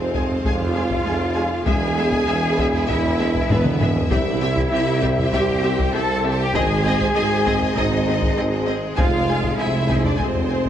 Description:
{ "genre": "cinematic, epic orchestral film score", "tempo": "98 BPM", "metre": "4/4", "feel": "straight", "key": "unclear", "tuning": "A4 = 440 Hz", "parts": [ { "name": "warm symphonic violin section", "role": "second line", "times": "0.0-10.7 s", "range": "B4 to A5", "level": "-28 LUFS", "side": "left 4 dB", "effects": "none" }, { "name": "dark French horn section", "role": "sustained chords", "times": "0.0-10.7 s", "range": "G3 to C4", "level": "-29 LUFS", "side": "left 2 dB", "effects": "none" }, { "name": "rich symphonic string section", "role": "sustained chords", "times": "0.0-10.7 s", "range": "Ab3 to F5", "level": "-29 LUFS", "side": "equal", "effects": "none" }, { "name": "clear symphonic double bass section", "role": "bass", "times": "0.0-10.7 s", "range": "F1 to F2", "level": "-26 LUFS", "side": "right 2 dB", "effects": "none" }, { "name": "clear tuba", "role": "bass", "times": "0.0-10.7 s", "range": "E1 to C2", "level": "-26 LUFS", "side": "right 3 dB", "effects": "none" }, { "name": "rich symphonic cello section", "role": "bass", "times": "0.0-10.7 s", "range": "B3 to A4", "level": "-24 LUFS", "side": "right 1 dB", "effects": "none" }, { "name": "clear symphonic viola section", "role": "accompaniment", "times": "0.1-10.6 s", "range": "Ab3 to Ab4", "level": "-30 LUFS", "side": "equal", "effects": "none" }, { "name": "taiko ensemble", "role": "drums", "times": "0.1-10.7 s", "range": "none", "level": "-25 LUFS", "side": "left 1 dB", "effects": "none" }, { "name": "clear symphonic violin section", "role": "melody", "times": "0.2-10.6 s", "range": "Eb5 to Ab5", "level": "-31 LUFS", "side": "left 2 dB", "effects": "none" }, { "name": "timpani", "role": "percussion", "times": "4.1-5.0 s", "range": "C3", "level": "-30 LUFS", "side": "left 1 dB", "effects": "none" } ], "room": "moderate scoring stage reverb, RT60 1.6 s", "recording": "worn, warbling old tape, cassette tape, warbly pitch drift", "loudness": "-17 LUFS", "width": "side -10 dB against mid", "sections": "0.0-10.7 A section", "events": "drum fill 3.5-4.1", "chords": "0.0 Fm; 1.7 E; 4.1 C; 6.5 Ab; 9.0 Fm", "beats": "0.45 1.06 | 1.67 2.28 2.89 3.50 | 4.11 4.72 5.33 5.94 | 6.55 7.16 7.77 8.38 | 8.98 9.59 10.20" }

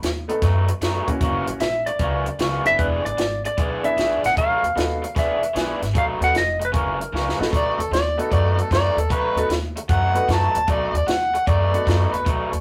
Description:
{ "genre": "electric blues shuffle", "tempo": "152 BPM", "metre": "4/4", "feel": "swing 67% on 8ths", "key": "B mixolydian", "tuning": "A4 = 440 Hz", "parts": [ { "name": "raw garage guitar", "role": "riff", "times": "0.0-12.6 s", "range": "F#2 to G#4", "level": "-28 LUFS", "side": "equal", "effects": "overdrive" }, { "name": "upright bass", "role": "bass", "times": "0.0-12.6 s", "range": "E1 to F#2", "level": "-27 LUFS", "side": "equal", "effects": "none" }, { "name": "compact cocktail drum kit", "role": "drums", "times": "0.0-12.6 s", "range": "hi-hat, kick drum, snare drum", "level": "-27 LUFS", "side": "equal", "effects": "none" }, { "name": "bright upright piano", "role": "accompaniment", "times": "0.3-12.2 s", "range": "A3 to B4", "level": "-30 LUFS", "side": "equal", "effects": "none" }, { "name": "clean lap steel guitar", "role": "melody", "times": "1.6-7.4 s", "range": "A#4 to F#5", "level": "-24 LUFS", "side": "equal", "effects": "none" }, { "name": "overdriven harmonica", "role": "second line", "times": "7.6-12.3 s", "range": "A4 to A5", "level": "-24 LUFS", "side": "equal", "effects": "none" } ], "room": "moderate studio reverb, RT60 0.5 s", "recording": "rough rehearsal-room recording, tube saturation", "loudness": "-21 LUFS", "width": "mono", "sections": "0.0-7.5 A section; 7.5-12.6 B section", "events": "drum fill 7.1-7.5; harmonica solo 7.5-12.6", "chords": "0.0 B7; 1.2 F#7; 2.8 E7; 4.4 B7; 5.2 E7; 5.9 B7; 6.7 F#7; 7.5 B7", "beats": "0.02 0.42 0.81 | 1.21 1.60 2.00 2.39 | 2.79 3.18 3.58 3.97 | 4.37 4.76 5.16 5.55 | 5.95 6.34 6.74 7.13 | 7.52 7.92 8.31 8.71 | 9.10 9.50 9.89 10.29 | 10.68 11.08 11.47 11.87 | 12.26" }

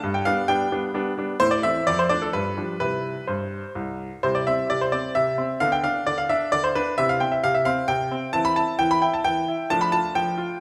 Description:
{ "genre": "classical-period piano sonatina", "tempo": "132 BPM", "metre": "3/4", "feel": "straight", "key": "C major", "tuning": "A4 = 440 Hz", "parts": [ { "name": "clear grand piano", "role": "solo", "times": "0.0-10.6 s", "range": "C2 to B5", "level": "-23 LUFS", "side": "equal", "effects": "none" } ], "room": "wet recital hall reverb, RT60 1.7 s", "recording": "none", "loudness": "-23 LUFS", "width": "mono", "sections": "0.0-4.2 A section; 4.2-10.6 A section", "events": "none", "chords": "0.0 G; 1.4 Am; 1.9 Dm/F; 2.3 G7; 2.8 C; 5.6 Dm69; 7.0 C; 8.3 C/E; 9.7 Dm/F", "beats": "| 0.04 0.49 0.95 | 1.41 1.87 2.33 | 2.80 3.28 3.76 | 4.23 4.70 5.15 | 5.61 6.07 6.52 | 6.98 7.43 7.89 | 8.34 8.79 9.25 | 9.70 10.16" }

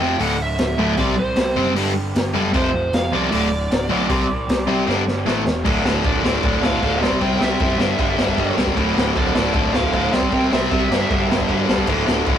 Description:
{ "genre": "punk rock", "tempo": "154 BPM", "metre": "4/4", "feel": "straight", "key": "unclear", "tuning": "A4 = 436 Hz", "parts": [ { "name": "biting lead guitar", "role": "melody", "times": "0.0-11.7 s", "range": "C5 to G5", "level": "-25 LUFS", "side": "right 2 dB", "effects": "overdrive" }, { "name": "cranked stack guitar", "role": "riff", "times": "0.0-12.4 s", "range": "D2 to C4", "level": "-24 LUFS", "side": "right 5 dB", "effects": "overdrive" }, { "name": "distorted electric guitar", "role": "riff", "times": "0.0-12.4 s", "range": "D2 to C4", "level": "-22 LUFS", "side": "left 5 dB", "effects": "overdrive" }, { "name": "raw garage guitar", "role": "riff", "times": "0.0-12.4 s", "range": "D2 to C4", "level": "-30 LUFS", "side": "right 2 dB", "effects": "none" }, { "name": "modern bright picked electric bass", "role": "bass", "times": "0.0-12.4 s", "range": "D1 to C#2", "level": "-26 LUFS", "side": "equal", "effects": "none" }, { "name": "raw garage drum kit", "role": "drums", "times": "0.2-12.4 s", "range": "crash cymbal, hi-hat, kick drum, ride cymbal, snare drum", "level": "-22 LUFS", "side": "equal", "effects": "none" } ], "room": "light reverb", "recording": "rough rehearsal-room recording", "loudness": "-16 LUFS", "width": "side -9 dB against mid", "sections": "0.0-5.7 A section; 5.7-12.4 B section", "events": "half time 0.0-5.7; drum fill 4.9-5.7", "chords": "0.2 D5; 1.0 C5; 1.8 G5; 2.5 F5; 3.3 D5; 4.1 C5; 4.9 G5; 5.3 A5; 5.7 D5; 7.0 C; 7.8 G5; 8.8 D5; 10.1 C; 10.9 G5; 11.9 D5", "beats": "0.20 0.59 | 0.98 1.37 1.76 2.15 | 2.54 2.93 3.32 3.71 | 4.10 4.49 4.88 5.27 | 5.66 6.05 6.44 6.83 | 7.21 7.60 7.99 8.38 | 8.77 9.16 9.55 9.93 | 10.32 10.71 11.10 11.49 | 11.87 12.26" }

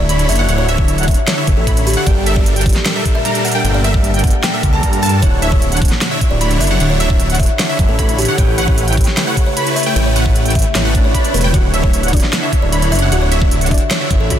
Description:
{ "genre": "future bass", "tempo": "152 BPM", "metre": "4/4", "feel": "half-time", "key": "D major", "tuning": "A4 = 439 Hz", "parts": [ { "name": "kalimba", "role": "melody", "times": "0.0-14.4 s", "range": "G4 to A5", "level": "-22 LUFS", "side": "left 1 dB", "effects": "sidechain pumping, ping-pong delay" }, { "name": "ethereal airy pad", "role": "sustained chords", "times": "0.2-14.4 s", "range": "Bb2 to C#5", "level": "-27 LUFS", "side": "equal", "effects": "none" }, { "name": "wide unison pluck", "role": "arpeggios", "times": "0.0-14.4 s", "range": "E5 to B5", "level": "-24 LUFS", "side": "right 1 dB", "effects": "sidechain pumping" }, { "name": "supersaw chords", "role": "riff", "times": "0.0-14.4 s", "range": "D3 to B5", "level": "-20 LUFS", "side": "equal", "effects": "sidechain pumping" }, { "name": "wide detuned saw bass", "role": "bass", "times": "0.0-14.4 s", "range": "D1 to G2", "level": "-16 LUFS", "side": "equal", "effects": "chorus, tube saturation, sidechain pumping" }, { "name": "pop drum kit", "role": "drums", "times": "0.1-14.4 s", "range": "hi-hat, snare drum", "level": "-20 LUFS", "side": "right 1 dB", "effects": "soft clipping on snare" }, { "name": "electronic kick drum", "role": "drums", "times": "0.8-14.4 s", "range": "none", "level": "-14 LUFS", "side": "equal", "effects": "none" }, { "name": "swell", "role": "sound effects", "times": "11.0-11.5 s", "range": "none", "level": "-26 LUFS", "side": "equal", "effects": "none" }, { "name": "soft round pluck", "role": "accompaniment", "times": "11.5-14.4 s", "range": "D3 to D5", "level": "-25 LUFS", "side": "left 1 dB", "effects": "analog chorus, sidechain pumping, ping-pong delay" } ], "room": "little or no reverb", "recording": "dense, heavily limited modern master", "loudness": "-12 LUFS", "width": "side -10 dB against mid", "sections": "0.0-14.4 A section", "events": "swell 11.0-11.5", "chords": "0.0 Dmaj7; 2.1 Gmadd9; 5.2 Dmaj7; 8.4 A7; 11.5 Dmaj7", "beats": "0.09 | 0.49 0.88 1.28 1.67 | 2.07 2.46 2.86 3.25 | 3.65 4.04 4.43 4.83 | 5.22 5.62 6.01 6.41 | 6.80 7.20 7.59 7.99 | 8.38 8.78 9.17 9.57 | 9.96 10.36 10.75 11.14 | 11.54 11.94 12.33 12.72 | 13.12 13.51 13.91 14.30" }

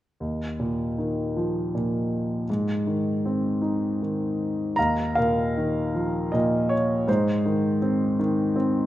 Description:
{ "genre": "classical, lyrical solo piano", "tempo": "80 BPM", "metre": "3/4", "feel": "rubato", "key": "unclear", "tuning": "A4 = 440 Hz", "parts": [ { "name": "clear grand piano", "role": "solo", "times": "0.2-8.9 s", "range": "Eb2 to Bb5", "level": "-22 LUFS", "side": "equal", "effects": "none" } ], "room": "light reverb", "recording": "none", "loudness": "-22 LUFS", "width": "side -14 dB against mid", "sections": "0.2-4.8 A section; 4.8-8.9 B section", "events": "none", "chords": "0.2 Ebsus2; 2.5 Ab; 4.8 Ebsus2; 7.1 Ab", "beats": "| 0.21 0.98 1.73 | 2.48 3.23 4.00 | 4.77 5.55 6.33 | 7.08 7.82 8.56" }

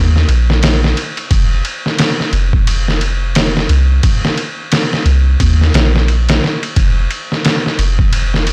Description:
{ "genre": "trip hop", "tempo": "88 BPM", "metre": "4/4", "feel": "swing 59% on 16ths", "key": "unclear", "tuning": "A4 = 442 Hz", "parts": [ { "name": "soft 808-style bass", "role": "bass", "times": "0.0-8.5 s", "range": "F1 to Eb2", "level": "-15 LUFS", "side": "equal", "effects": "transformer saturation" }, { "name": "trip hop sampler-style drum kit", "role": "drums", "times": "0.2-8.5 s", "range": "kick drum, ride cymbal, snare drum", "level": "-16 LUFS", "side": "equal", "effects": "overdrive" } ], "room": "digital ambience", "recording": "blown-out, overdriven recording, overdrive", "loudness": "-14 LUFS", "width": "mono", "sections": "0.0-8.5 A section", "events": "none", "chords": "none", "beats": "0.62 | 1.30 1.99 2.67 3.35 | 4.03 4.71 5.40 6.08 | 6.76 7.44 8.12" }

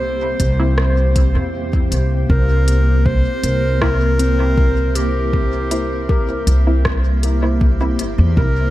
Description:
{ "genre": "ambient dub", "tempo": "79 BPM", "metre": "4/4", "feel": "straight", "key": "C mixolydian", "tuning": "A4 = 440 Hz", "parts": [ { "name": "warm clarinet", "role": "melody", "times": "0.0-8.7 s", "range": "G4 to C5", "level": "-23 LUFS", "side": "equal", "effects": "tape echo" }, { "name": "granular cloud pad", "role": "sustained chords", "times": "0.0-8.7 s", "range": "Bb3 to E5", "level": "-25 LUFS", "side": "equal", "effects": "built-in reverb" }, { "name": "upright bass", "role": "bass", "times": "0.0-8.7 s", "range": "G1 to E2", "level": "-16 LUFS", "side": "equal", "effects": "none" }, { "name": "electronic kick drum", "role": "drums", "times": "0.4-8.5 s", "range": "none", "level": "-18 LUFS", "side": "equal", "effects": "none" }, { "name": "organic electronic drum kit", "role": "drums", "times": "0.4-8.1 s", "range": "hi-hat, rim click", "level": "-26 LUFS", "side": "equal", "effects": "dub echo" }, { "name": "filtered dub chord stab", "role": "stabs", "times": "0.6-8.0 s", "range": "Bb3 to E4", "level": "-26 LUFS", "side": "equal", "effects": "lush chorus, dub echo" }, { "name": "handpan", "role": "arpeggios", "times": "4.2-8.7 s", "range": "C4 to Bb4", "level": "-27 LUFS", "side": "left 3 dB", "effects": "tape echo" } ], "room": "light reverb", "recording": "none", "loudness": "-14 LUFS", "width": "side -15 dB against mid", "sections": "0.0-2.3 A section; 2.3-8.7 B section", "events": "filter sweep on synth stab 0.0-2.3", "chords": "0.0 C7", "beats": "0.02 0.78 1.54 | 2.30 3.06 3.82 4.58 | 5.33 6.09 6.85 7.61 | 8.37" }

